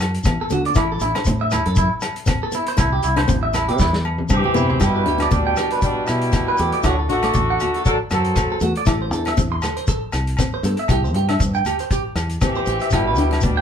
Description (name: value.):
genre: highlife guitar band.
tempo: 118 BPM.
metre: 4/4.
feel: swing 54% on 16ths.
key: G major.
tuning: A4 = 439 Hz.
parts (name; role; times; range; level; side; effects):
fingered electric bass; bass; 0.0-13.6 s; G1 to D3; -22 LUFS; equal; none.
vintage drum kit; drums; 0.0-13.6 s; hi-hat, kick drum, rim click, snare drum, toms; -23 LUFS; equal; none.
agogo bells; percussion; 0.0-13.4 s; none; -30 LUFS; left 3 dB; none.
shekere; percussion; 0.2-13.5 s; none; -28 LUFS; left 2 dB; none.
picked plugged-in steel-string acoustic guitar; accompaniment; 0.3-13.6 s; A3 to E4; -26 LUFS; left 5 dB; none.
clean electric guitar; arpeggios; 0.4-13.6 s; E4 to C6; -23 LUFS; right 3 dB; spring reverb.
congas; percussion; 0.5-13.6 s; none; -30 LUFS; right 2 dB; none.
warm horn section; melody; 4.3-8.6, 12.4-13.6 s; F#3 to A4; -22 LUFS; equal; none.
bright trombone; second line; 4.4-8.6, 12.4-13.6 s; A2 to F#3; -28 LUFS; left 2 dB; none.
room: moderate small room reverb, RT60 0.6 s.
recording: band playing live in one room.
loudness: -17 LUFS.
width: side -8 dB against mid.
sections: 0.0-4.8 A section; 4.8-13.6 B section.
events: drum fill 3.8-4.8.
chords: 0.0 Am; 2.8 C; 4.8 G; 6.8 D; 8.9 Am; 12.9 G.